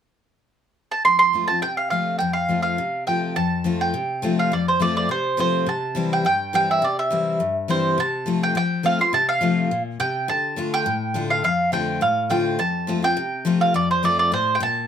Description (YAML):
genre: bluegrass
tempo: 208 BPM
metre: 4/4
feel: straight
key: F major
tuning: A4 = 440 Hz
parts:
  - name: mandolin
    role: melody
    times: 0.9-14.9 s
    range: C5 to C6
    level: -20 LUFS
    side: right 2 dB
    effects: none
  - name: picked steel-string acoustic guitar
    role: accompaniment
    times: 1.0-14.9 s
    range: F2 to F4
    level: -24 LUFS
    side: left 4 dB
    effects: none
room: moderate studio reverb, RT60 0.5 s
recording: none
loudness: -19 LUFS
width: side -8 dB against mid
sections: 0.0-1.1 A section; 1.1-3.4 B section; 3.4-12.6 C section; 12.6-14.9 C section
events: none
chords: 0.0 N.C.; 1.1 F; 5.7 C; 8.0 F/C; 10.3 Dm; 11.4 F6; 12.6 F